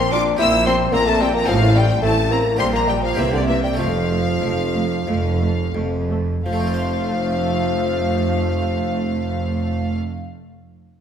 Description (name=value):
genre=classical, baroque-style concerto movement with solo episodes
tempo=83-112 BPM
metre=4/4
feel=straight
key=F major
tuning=A4 = 440 Hz
part: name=clear chamber violin section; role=melody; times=0.0-10.0 s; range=D5 to E6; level=-26 LUFS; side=left 4 dB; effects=none
part: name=warm bassoon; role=melody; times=0.0-10.0 s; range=D3 to E4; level=-22 LUFS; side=left 2 dB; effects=none
part: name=harpsichord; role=accompaniment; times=0.0-10.2 s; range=F2 to C5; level=-29 LUFS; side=equal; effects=none
part: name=rich chamber double bass section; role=bass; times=0.0-10.0 s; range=F1 to C2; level=-25 LUFS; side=right 2 dB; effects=none
part: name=rich symphonic cello section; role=bass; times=0.0-10.0 s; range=F2 to C3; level=-23 LUFS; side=right 2 dB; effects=none
part: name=rich chamber violin section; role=second line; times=0.1-10.0 s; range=D5 to E6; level=-28 LUFS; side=left 2 dB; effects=none
part: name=rich studio viola section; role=accompaniment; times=0.1-10.0 s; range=G3 to F4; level=-27 LUFS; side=right 2 dB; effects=none
room=wet recital hall reverb, RT60 1.5 s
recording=recorded in a church or concert hall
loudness=-17 LUFS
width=side -8 dB against mid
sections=0.0-6.5 A section; 6.5-11.0 B section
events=slowing down 0.4-6.5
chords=0.4 C5/Bb; 1.5 Gm11/A; 2.6 Gm/Bb; 3.2 C5; 3.8 F